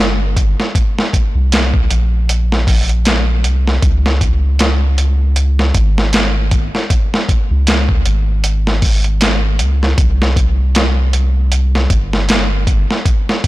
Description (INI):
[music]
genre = trip hop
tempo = 78 BPM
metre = 4/4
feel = swing 57% on 16ths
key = unclear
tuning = A4 = 437 Hz
[part]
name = soft dub sub bass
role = bass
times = 0.0-12.8 s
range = G1 to Db2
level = -14 LUFS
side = equal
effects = tube saturation
[part]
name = dusty soul sampler-style drum kit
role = drums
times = 0.4-13.5 s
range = hi-hat, kick drum, snare drum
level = -14 LUFS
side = equal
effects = overdrive, studio reverb
[sound]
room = little or no reverb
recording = blown-out, overdriven recording, overdrive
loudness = -12 LUFS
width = side -18 dB against mid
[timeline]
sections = 0.0-13.5 A section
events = none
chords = none